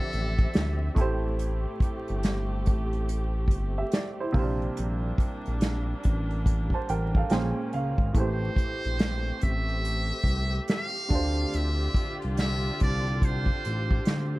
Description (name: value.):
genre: R&B, neo-soul.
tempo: 71 BPM.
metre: 4/4.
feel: swing 64% on 16ths.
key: D minor.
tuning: A4 = 438 Hz.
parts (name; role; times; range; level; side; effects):
trumpet with metal mute; melody; 0.0-0.9, 8.2-14.4 s; A4 to F5; -33 LUFS; right 1 dB; none.
clear concert grand piano; accompaniment; 0.0-14.4 s; A2 to A5; -33 LUFS; right 3 dB; none.
warm studio string section; sustained chords; 0.0-14.4 s; D3 to E5; -36 LUFS; equal; none.
smooth synth bass; bass; 0.1-14.4 s; G1 to D2; -28 LUFS; equal; none.
unplugged drum kit; drums; 0.1-14.3 s; hi-hat, kick drum, snare drum; -26 LUFS; equal; none.
room: studio ambience.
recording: dark, warm production, vinyl crackle.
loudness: -25 LUFS.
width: side -19 dB against mid.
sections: 0.0-14.4 A section.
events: grand piano fill 6.9-8.1.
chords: 0.0 Dm11; 1.0 Am7; 4.3 Bb69; 7.3 Bbm7; 8.1 Am7; 11.1 Dm7.